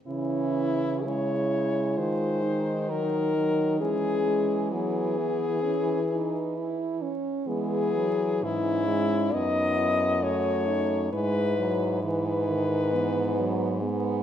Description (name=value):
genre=classical, lyrical piece for horn quartet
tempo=66 BPM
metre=4/4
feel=rubato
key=C# minor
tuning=A4 = 440 Hz
part: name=warm French horn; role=melody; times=0.1-14.2 s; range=E4 to D#5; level=-28 LUFS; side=left 4 dB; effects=none
part: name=warm French horn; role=second line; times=0.1-14.2 s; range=B3 to F#4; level=-31 LUFS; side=right 6 dB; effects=none
part: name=mellow French horn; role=accompaniment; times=0.1-14.2 s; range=D#3 to B3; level=-31 LUFS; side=left 1 dB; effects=none
part: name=clear French horn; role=bass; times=0.1-14.2 s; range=F#2 to E3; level=-31 LUFS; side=right 1 dB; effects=none
room=moderate concert hall reverb, RT60 2.1 s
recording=dark, warm production, vinyl crackle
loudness=-24 LUFS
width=side -10 dB against mid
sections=0.1-14.2 A section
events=none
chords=0.1 C#m; 2.0 Cdim/Eb; 3.8 C#m/E; 7.5 E; 9.3 D#dim/F#; 11.1 E/G#